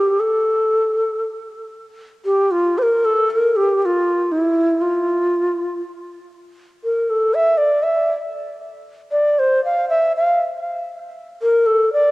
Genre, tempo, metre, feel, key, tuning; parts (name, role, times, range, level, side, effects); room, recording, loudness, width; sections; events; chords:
turkish; free time; A4 = 440 Hz
breathy reedy low ney; solo; 0.0-12.1 s; E4 to F5; -16 LUFS; equal; cassette tape, tape echo
moderate spring reverb, RT60 2.5 s; home recording on cassette; -16 LUFS; side -21 dB against mid
0.0-12.1 A section